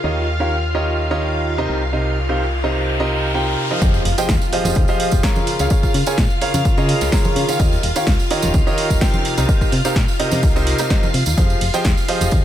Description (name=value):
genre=piano house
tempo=127 BPM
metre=4/4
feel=swing 53% on 16ths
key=F minor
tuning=A4 = 440 Hz
part: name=string machine, violins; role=sustained chords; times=0.0-12.4 s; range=F4 to F5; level=-25 LUFS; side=left 1 dB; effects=ensemble chorus, sidechain pumping
part: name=clear concert grand piano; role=riff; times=0.0-12.4 s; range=C3 to Bb5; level=-21 LUFS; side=right 1 dB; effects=sidechain pumping, dub echo
part: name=solid FM bass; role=bass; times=0.0-12.4 s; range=Eb1 to Db3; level=-21 LUFS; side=equal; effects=sidechain pumping
part: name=riser and impact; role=sound effects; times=1.3-5.7 s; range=none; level=-28 LUFS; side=left 1 dB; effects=none
part: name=electronic kick drum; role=drums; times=3.8-12.4 s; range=none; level=-17 LUFS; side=equal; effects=none
part: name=punchy analog drum machine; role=drums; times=3.8-12.4 s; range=hi-hat, ride cymbal, snare drum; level=-25 LUFS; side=right 1 dB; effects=none
part: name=tambourine and congas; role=percussion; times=3.8-12.4 s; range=none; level=-27 LUFS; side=right 3 dB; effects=none
room=digital ambience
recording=none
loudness=-15 LUFS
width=side -11 dB against mid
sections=0.0-3.8 A section; 3.8-12.4 B section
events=riser 1.3-3.8; drop 3.8-12.4; impact 3.8-5.7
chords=0.0 Eb9; 1.7 Cm7; 3.8 Fm9; 5.5 Db6; 7.6 Eb9; 9.2 Cm7; 11.4 Fm9